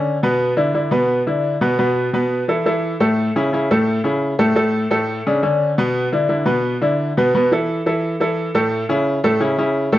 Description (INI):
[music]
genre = latin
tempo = 173 BPM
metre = 4/4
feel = straight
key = A major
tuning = A4 = 440 Hz
[part]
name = bright baby grand piano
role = solo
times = 0.0-10.0 s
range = A2 to B4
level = -16 LUFS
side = equal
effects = none
[sound]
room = moderate large studio reverb, RT60 0.9 s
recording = worn, warbling old tape, cassette tape, warbly pitch drift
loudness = -16 LUFS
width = side -14 dB against mid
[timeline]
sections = 0.0-7.3 A section; 7.3-10.0 B section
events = none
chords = 0.4 E5; 1.8 Asus2; 3.2 A; 4.6 D5; 6.0 E5; 7.3 Asus2; 8.7 A